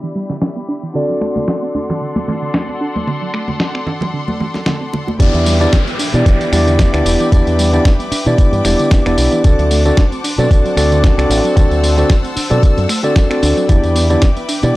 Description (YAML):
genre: nu-disco, nu disco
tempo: 113 BPM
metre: 4/4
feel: swing 55% on 16ths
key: E minor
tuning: A4 = 440 Hz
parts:
  - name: mellow tine electric piano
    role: accompaniment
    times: 0.0-14.8 s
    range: B3 to D5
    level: -17 LUFS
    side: equal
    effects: sidechain pumping, low-pass filter, analog delay
  - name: rich studio string section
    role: sustained chords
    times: 0.0-14.8 s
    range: G4 to E6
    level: -25 LUFS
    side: left 2 dB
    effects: sidechain pumping
  - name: soft round pluck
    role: arpeggios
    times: 0.0-14.7 s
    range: D3 to F#4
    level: -24 LUFS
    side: right 3 dB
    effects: chorus, sidechain pumping, tape echo
  - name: dusty soul sampler-style drum kit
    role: drums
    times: 0.3-14.7 s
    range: finger snaps, hi-hat, snare drum, tambourine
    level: -21 LUFS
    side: equal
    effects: none
  - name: congas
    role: percussion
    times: 1.2-5.2 s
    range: none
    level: -23 LUFS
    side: equal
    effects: none
  - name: fingered electric bass with an envelope filter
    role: bass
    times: 5.2-14.7 s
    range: E1 to B2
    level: -15 LUFS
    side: equal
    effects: sidechain pumping
  - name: electronic kick drum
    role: drums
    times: 5.2-14.3 s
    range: none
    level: -11 LUFS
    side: equal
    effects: none
  - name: downlifter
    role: sound effects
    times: 5.2-9.4 s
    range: none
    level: -26 LUFS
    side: left 1 dB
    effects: none
room: little or no reverb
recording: dry, gritty hardware recording, low-pass filter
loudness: -12 LUFS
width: side -18 dB against mid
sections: 0.0-5.2 A section; 5.2-14.8 B section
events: filter sweep on tine electric piano 0.0-5.2; filter sweep on string section 0.0-5.2; filter sweep on synth arpeggio sound 0.0-5.2; filter sweep 0.0-5.2; drop 5.2-14.8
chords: 0.0 Em7; 0.9 D7; 5.2 Em7; 9.4 D7; 13.7 Em7